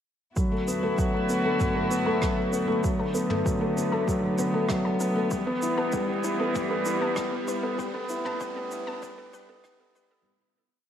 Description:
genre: piano and strings electronica.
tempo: 97 BPM.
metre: 4/4.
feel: straight.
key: unclear.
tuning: A4 = 445 Hz.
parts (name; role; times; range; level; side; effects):
warm studio string section; sustained chords; 0.4-10.2 s; D3 to F#4; -31 LUFS; right 1 dB; sidechain pumping.
analog pluck; arpeggios; 0.4-10.2 s; A4 to A5; -39 LUFS; equal; none.
felt-muted upright piano; riff; 0.4-10.3 s; F#3 to E4; -26 LUFS; left 1 dB; tape echo.
electronic kick drum; drums; 0.4-9.8 s; none; -30 LUFS; right 1 dB; overdrive.
vintage brush drum kit; drums; 0.4-10.1 s; rim click, shaker, toms; -38 LUFS; right 1 dB; none.
riser; sound effects; 4.9-10.3 s; none; -43 LUFS; equal; none.
round analog bass; bass; 0.7-10.2 s; E1 to E2; -51 LUFS; right 1 dB; none.
room: wet echo chamber reverb, RT60 1.5 s.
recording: high-pass filter.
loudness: -24 LUFS.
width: side -9 dB against mid.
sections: 0.4-10.3 build.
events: build-up 0.4-10.3; fade-out 7.0-10.3.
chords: 0.4 D6; 2.8 Bm7; 5.3 Em; 7.8 A5.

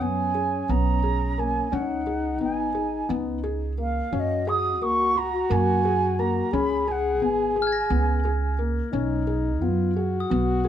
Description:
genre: contemporary instrumental, chamber music in an uneven meter.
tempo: 175 BPM (eighths).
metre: 7/8.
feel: straight.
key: Db mixolydian.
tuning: A4 = 441 Hz.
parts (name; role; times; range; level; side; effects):
mellow wooden flute; melody; 0.0-8.6 s; Eb5 to Eb6; -26 LUFS; right 4 dB; none.
mellow French horn; second line; 0.0-10.7 s; Db4 to Ab4; -28 LUFS; left 4 dB; none.
felt-muted upright piano; arpeggios; 0.0-10.7 s; Bb3 to Ab4; -29 LUFS; left 5 dB; none.
upright bass; bass; 0.0-10.7 s; Ab1 to Gb2; -27 LUFS; right 2 dB; none.
glockenspiel with hard plastic mallets; texture; 0.0-2.0, 7.6-10.7 s; Eb6 to Bb6; -35 LUFS; left 6 dB; none.
room: light reverb.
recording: close, detailed microphones.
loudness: -22 LUFS.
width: side -10 dB against mid.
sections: 0.0-10.7 A section.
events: none.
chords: 0.0 Cb69; 1.7 Db9sus4; 4.1 Gbadd9; 6.5 Db5; 8.9 Cb69.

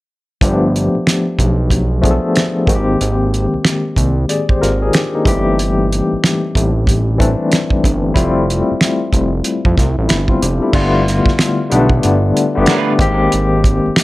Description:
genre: R&B, neo-soul.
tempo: 93 BPM.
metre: 4/4.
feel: swing 63% on 16ths.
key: unclear.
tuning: A4 = 440 Hz.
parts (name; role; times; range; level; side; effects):
barky tine electric piano; accompaniment; 0.4-14.0 s; D3 to D5; -15 LUFS; left 2 dB; overdrive, medium tremolo, plate reverb.
fat analog bass; bass; 0.4-13.9 s; F1 to F2; -16 LUFS; right 1 dB; none.
cloth-damped thuddy drum kit; drums; 0.4-14.0 s; crash cymbal, finger snaps, hi-hat, kick drum, snare drum; -15 LUFS; right 1 dB; none.
electric guitar at the edge of break-up; second line; 12.7-12.9 s; A3 to B4; -22 LUFS; right 8 dB; analog delay, plate reverb.
room: light reverb.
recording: none.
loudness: -12 LUFS.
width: side -18 dB against mid.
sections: 0.4-10.7 A section; 10.7-14.0 B section.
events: none.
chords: 0.4 G9; 2.7 Abmaj9; 5.3 C6/G; 8.2 Fmaj9; 10.7 G9; 13.0 Abmaj9.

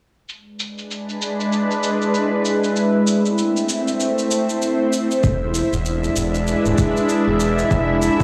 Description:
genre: organic downtempo.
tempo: 97 BPM.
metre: 4/4.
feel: swing 60% on 16ths.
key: E phrygian dominant.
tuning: A4 = 440 Hz.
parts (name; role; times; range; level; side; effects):
bowed-like drone; sustained chords; 0.9-8.2 s; G#3 to E5; -20 LUFS; equal; built-in reverb, phaser, sidechain pumping.
cabasa; drums; 0.3-8.2 s; none; -31 LUFS; equal; low-pass filter on perc, low-pass filter on room.
round analog bass; bass; 5.2-8.2 s; D1 to F1; -25 LUFS; equal; tube saturation, sidechain pumping.
electronic kick drum; drums; 5.2-8.2 s; none; -21 LUFS; equal; none.
room: wet lush hall reverb, RT60 2.1 s.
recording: blown-out, overdriven recording, overdrive, studio reverb.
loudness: -19 LUFS.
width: mono.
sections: 0.3-8.2 A section.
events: none.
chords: 0.3 E7; 2.8 Am; 5.2 E7; 7.7 Fmaj7.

